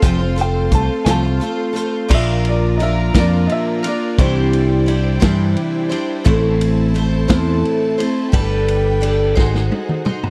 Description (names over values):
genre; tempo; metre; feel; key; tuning
folk rock and heartland rock; 58 BPM (dotted quarters); 6/8; straight; unclear; A4 = 440 Hz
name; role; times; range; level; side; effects
clear upright piano; second line; 0.0-5.5 s; C5 to A5; -28 LUFS; equal; none
picked twelve-string acoustic guitar; accompaniment; 0.0-10.3 s; A2 to C5; -21 LUFS; equal; none
clear symphonic string section; sustained chords; 0.0-10.3 s; D4 to C6; -32 LUFS; equal; none
picked electric bass; bass; 0.0-9.7 s; F1 to G2; -20 LUFS; equal; none
vintage drum kit; drums; 0.0-10.3 s; crash cymbal, hi-hat, kick drum, ride cymbal, snare drum, toms; -21 LUFS; equal; none
room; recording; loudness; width
little or no reverb; dry, close 1970s-style studio recording; -17 LUFS; mono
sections
0.0-2.1 A section; 2.1-10.3 B section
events
upright piano solo 0.0-2.1; drum fill 9.4-10.3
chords
0.0 F; 2.1 Bb; 4.2 Cadd9; 6.3 Am; 8.3 Gadd9; 9.4 Ab7